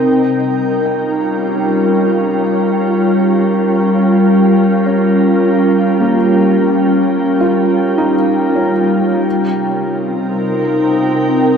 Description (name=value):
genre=ambient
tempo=free time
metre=none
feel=none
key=unclear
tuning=A4 = 438 Hz
part: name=glassy FM pad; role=sustained chords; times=0.0-11.6 s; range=C3 to G5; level=-11 LUFS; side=equal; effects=ensemble chorus, built-in reverb
part: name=felt-muted upright piano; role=arpeggios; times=0.9-11.6 s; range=Bb3 to G5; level=-21 LUFS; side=right 1 dB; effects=ping-pong delay
room=wet cathedral reverb, RT60 5.7 s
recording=in a vast, echoing space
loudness=-11 LUFS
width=side -7 dB against mid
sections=0.0-11.6 A section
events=fade-in on felt piano 0.0-11.6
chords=0.0 Gm7b5; 9.3 Cm7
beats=free time